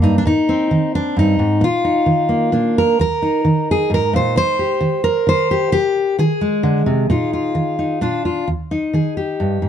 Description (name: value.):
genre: folk, solo fingerstyle acoustic guitar.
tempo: 132 BPM.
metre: 3/4.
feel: straight.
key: Eb major.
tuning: A4 = 440 Hz.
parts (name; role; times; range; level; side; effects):
fingerpicked steel-string acoustic guitar; solo; 0.0-9.7 s; Eb2 to C5; -15 LUFS; equal; none.
room: light reverb.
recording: dark, warm production.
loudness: -15 LUFS.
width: side -9 dB against mid.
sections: 0.0-8.5 A section; 8.5-9.7 B section.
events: none.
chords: 0.2 Ab; 1.6 Bbsus4; 2.5 Bb; 3.0 Eb5; 4.4 Cm; 5.7 Ab/C; 7.1 Bbsus4; 8.0 Bb; 8.5 Eb.